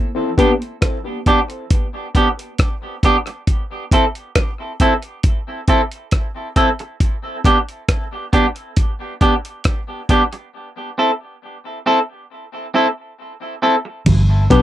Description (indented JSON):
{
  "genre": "dub reggae",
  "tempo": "68 BPM",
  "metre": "4/4",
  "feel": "straight",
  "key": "G major",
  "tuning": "A4 = 440 Hz",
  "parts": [
    { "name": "clean electric guitar", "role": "accompaniment", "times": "0.4-14.6 s", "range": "B3 to A4", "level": "-18 LUFS", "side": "right 1 dB", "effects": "tape echo" },
    { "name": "barky reed electric piano", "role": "stabs", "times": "0.4-0.5, 14.5-14.6 s", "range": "B3 to B4", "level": "-19 LUFS", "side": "left 4 dB", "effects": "overdrive, tape echo" },
    { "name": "dusty soul sampler-style drum kit", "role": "drums", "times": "0.4-14.6 s", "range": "crash cymbal, hi-hat, kick drum, rim click", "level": "-17 LUFS", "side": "equal", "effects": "none" },
    { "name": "vintage muted fingered electric bass", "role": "bass", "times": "14.1-14.6 s", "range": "G1 to B1", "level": "-12 LUFS", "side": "equal", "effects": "none" },
    { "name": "congas", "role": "percussion", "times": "14.1-14.3 s", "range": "none", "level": "-26 LUFS", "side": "right 3 dB", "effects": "tape echo" }
  ],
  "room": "light reverb",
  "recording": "dry, close 1970s-style studio recording",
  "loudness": "-15 LUFS",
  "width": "side -13 dB against mid",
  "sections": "0.0-14.1 A section",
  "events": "break 0.0-14.1",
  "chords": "0.0 G; 3.5 Am; 7.0 G; 10.5 Am; 14.1 G"
}